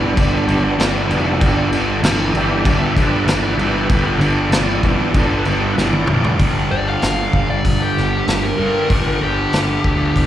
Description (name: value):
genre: blues rock power trio and southern rock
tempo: 96 BPM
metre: 4/4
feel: straight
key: G mixolydian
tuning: A4 = 440 Hz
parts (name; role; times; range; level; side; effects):
- overdriven tonewheel organ; sustained chords; 0.0-6.4 s; G3 to E5; -23 LUFS; right 2 dB; chorus vibrato, fast rotary speaker
- fuzz guitar; riff; 0.0-10.3 s; G2 to G3; -19 LUFS; equal; distortion, slapback echo
- fuzz picked electric bass; bass; 0.0-10.3 s; F1 to G2; -19 LUFS; equal; overdrive
- vintage drum kit; drums; 0.2-10.3 s; crash cymbal, hi-hat, kick drum, snare drum, toms; -19 LUFS; equal; none
- dark smooth lead guitar; melody; 6.7-10.3 s; G4 to F5; -21 LUFS; left 2 dB; overdrive, slapback echo
room: small room ambience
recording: live gig heard through the venue's PA, recital hall reverb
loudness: -14 LUFS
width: side -12 dB against mid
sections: 0.0-6.4 A section; 6.4-10.3 B section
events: tonewheel organ solo 0.0-6.4; drum fill 5.8-6.4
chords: 0.0 G; 6.4 G5